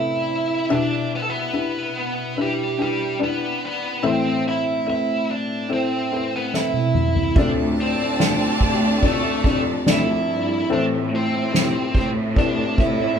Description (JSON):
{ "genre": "pop ballad", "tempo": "72 BPM", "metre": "4/4", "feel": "straight", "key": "A minor", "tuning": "A4 = 439 Hz", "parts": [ { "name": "bluesy overdriven lead guitar", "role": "melody", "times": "0.0-13.2 s", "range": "G3 to E5", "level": "-24 LUFS", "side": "right 3 dB", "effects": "distortion" }, { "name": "felt-muted upright piano", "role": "accompaniment", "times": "0.0-13.2 s", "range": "A2 to G5", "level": "-23 LUFS", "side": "left 3 dB", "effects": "none" }, { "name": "soft-mallet drum kit", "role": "drums", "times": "6.5-13.0 s", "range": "kick drum, ride cymbal, snare drum, toms", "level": "-22 LUFS", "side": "equal", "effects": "none" }, { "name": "rich studio violin section", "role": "second line", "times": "7.4-10.7 s", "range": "D4 to A5", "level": "-26 LUFS", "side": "right 1 dB", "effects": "none" }, { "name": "clear symphonic cello section", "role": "bass", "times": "7.4-13.2 s", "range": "D2 to A2", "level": "-25 LUFS", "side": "right 1 dB", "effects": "none" } ], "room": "moderate large studio reverb, RT60 0.9 s", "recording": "band playing live in one room", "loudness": "-19 LUFS", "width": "side -7 dB against mid", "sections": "0.0-13.2 A section", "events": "drum fill 6.5-7.4", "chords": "0.0 Amadd9; 0.7 Em7; 4.0 Amadd9; 7.4 Dm7; 10.7 Amadd9", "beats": "| 0.70 1.53 2.37 3.20 | 4.03 4.87 5.70 6.53 | 7.37 8.20 9.03 9.87 | 10.70 11.53 12.37" }